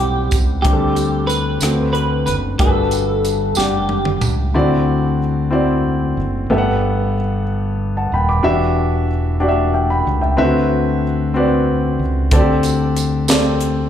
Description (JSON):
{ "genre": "slow gospel", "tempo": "62 BPM (dotted quarters)", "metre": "6/8", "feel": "straight", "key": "unclear", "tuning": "A4 = 439 Hz", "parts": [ { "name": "clean electric guitar", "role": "melody", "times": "0.0-4.3 s", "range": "G4 to B4", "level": "-21 LUFS", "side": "right 1 dB", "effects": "analog chorus, slapback echo, tape echo" }, { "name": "warm grand piano", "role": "accompaniment", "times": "0.0-13.9 s", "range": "G2 to D6", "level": "-18 LUFS", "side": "left 1 dB", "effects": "slapback echo" }, { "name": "fingered electric bass", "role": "bass", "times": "0.0-13.9 s", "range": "Eb1 to D2", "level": "-19 LUFS", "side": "left 1 dB", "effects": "none" }, { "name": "crisp fusion drum kit", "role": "drums", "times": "0.3-4.4, 12.3-13.8 s", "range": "hi-hat, kick drum, rim click, snare drum, toms", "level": "-19 LUFS", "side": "right 1 dB", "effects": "none" }, { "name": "tambourine", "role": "percussion", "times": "0.3-4.5, 12.6-13.6 s", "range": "none", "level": "-29 LUFS", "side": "right 7 dB", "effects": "none" } ], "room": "light reverb, studio reverb", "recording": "live gig heard through the venue's PA, club reverb", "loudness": "-14 LUFS", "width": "side -9 dB against mid", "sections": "0.0-4.5 A section; 4.5-13.9 B section", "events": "drum fill 3.6-4.5", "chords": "0.0 Cmaj7; 0.6 D7sus4; 1.6 D7; 2.6 Gmaj7; 4.5 D9; 6.5 Gmaj9; 8.4 Em9; 10.4 D13; 12.3 D7sus4" }